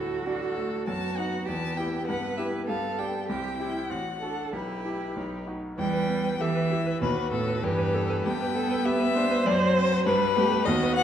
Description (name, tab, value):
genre	quick classical-period movement for piano quartet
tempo	99 BPM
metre	2/4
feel	straight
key	E minor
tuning	A4 = 440 Hz
part	rich violin	melody	0.0-11.0 s	G4 to A5	-30 LUFS	left 7 dB	none
part	rich cello	second line	0.0-11.0 s	G2 to B4	-30 LUFS	right 4 dB	none
part	bright concert grand piano	accompaniment	0.0-11.0 s	A1 to C5	-30 LUFS	left 1 dB	none
part	rich viola	accompaniment	0.0-11.0 s	F#3 to C5	-32 LUFS	right 3 dB	none
room	wet recital hall reverb, RT60 1.7 s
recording	dark, warm production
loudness	-24 LUFS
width	side -9 dB against mid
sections	0.0-5.8 A section; 5.8-11.0 B section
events	none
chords	0.0 D; 0.9 B7/F#; 1.5 Em; 2.1 Em/G; 2.7 G7; 3.3 C; 3.9 F#m/A; 4.5 Em/B; 5.2 B; 5.8 Em; 7.0 B7/D#; 7.6 Em; 8.3 G; 9.5 D7/F#; 10.1 G